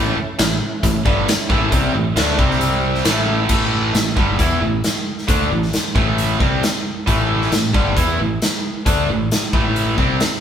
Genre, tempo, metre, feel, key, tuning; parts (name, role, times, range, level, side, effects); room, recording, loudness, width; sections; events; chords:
classic rock; 134 BPM; 4/4; straight; A4 = 440 Hz
tonewheel organ; sustained chords; 0.0-3.5 s; G3 to C5; -31 LUFS; equal
crunchy overdriven guitar; riff; 0.0-10.2 s; G2 to E4; -23 LUFS; left 6 dB
tight distorted guitar; riff; 0.0-10.2 s; G2 to E4; -21 LUFS; right 5 dB; distortion
modern bright picked electric bass; bass; 0.0-10.2 s; G1 to E2; -23 LUFS; equal
big rock drum kit; drums; 0.4-10.3 s; crash cymbal, hi-hat, kick drum, snare drum; -19 LUFS; equal
wet stone room reverb, RT60 1.3 s; band playing live in one room; -15 LUFS; side -8 dB against mid
0.0-3.5 A section; 3.5-10.4 B section
0.0 A; 2.4 C5; 3.1 A; 3.5 A5